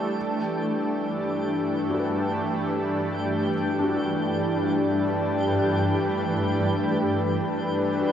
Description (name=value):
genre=ambient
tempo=free time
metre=none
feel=none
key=unclear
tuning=A4 = 440 Hz
part: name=shimmering ambient pad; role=sustained chords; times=0.0-8.1 s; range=G2 to B4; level=-24 LUFS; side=left 1 dB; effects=chorus, built-in reverb, shimmer reverb
part: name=pedal harmonium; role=drone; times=0.0-8.1 s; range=G3 to D4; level=-32 LUFS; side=right 1 dB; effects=none
part: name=twinkling granular texture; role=texture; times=0.0-8.1 s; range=G4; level=-32 LUFS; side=right 2 dB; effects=built-in reverb, shimmer reverb
part: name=felt-muted upright piano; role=arpeggios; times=1.9-8.1 s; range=D4 to B4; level=-34 LUFS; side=left 2 dB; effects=none
room=wet plate reverb, RT60 3.0 s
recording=echo-heavy mix, cassette tape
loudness=-23 LUFS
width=side -9 dB against mid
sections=0.0-8.1 A section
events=none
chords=0.2 Emadd9/G